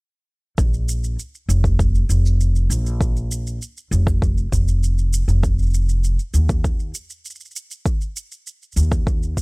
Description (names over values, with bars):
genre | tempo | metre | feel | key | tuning
folktronica | 99 BPM | 4/4 | straight | unclear | A4 = 438 Hz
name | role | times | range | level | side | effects
upright bass | bass | 0.6-9.3 s | F1 to Eb2 | -18 LUFS | equal | none
electronic kick drum | drums | 0.6-9.4 s | none | -20 LUFS | equal | none
shaker | drums | 0.6-9.4 s | none | -33 LUFS | right 3 dB | none
room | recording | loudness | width
small room ambience | none | -17 LUFS | side -35 dB against mid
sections
0.6-9.4 A section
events
none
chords
none